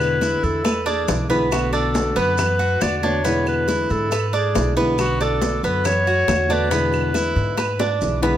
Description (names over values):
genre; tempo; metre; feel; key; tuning
latin, Cuban son and guajira; 138 BPM; 4/4; straight; unclear; A4 = 440 Hz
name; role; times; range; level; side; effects
warm clarinet; melody; 0.0-8.0 s; F#4 to D5; -23 LUFS; left 2 dB; none
nylon-string guitar; accompaniment; 0.0-8.4 s; B2 to F#4; -25 LUFS; left 2 dB; none
Cuban tres; arpeggios; 0.0-8.4 s; B3 to B4; -23 LUFS; right 4 dB; none
upright bass; bass; 0.0-8.4 s; B1 to G#2; -24 LUFS; equal; none
bongos; percussion; 0.0-8.3 s; none; -29 LUFS; left 8 dB; none
claves; percussion; 0.0-7.8 s; none; -35 LUFS; right 6 dB; none
congas; percussion; 0.0-8.3 s; none; -29 LUFS; left 1 dB; none
maracas; percussion; 0.0-8.4 s; none; -35 LUFS; right 4 dB; none
room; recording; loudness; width
light reverb; none; -17 LUFS; side -11 dB against mid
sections
0.0-8.4 A section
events
drum fill 0.7-1.5, 7.6-8.4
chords
0.0 E7; 1.5 Bm7; 3.3 E7; 5.0 Bm7; 6.7 E7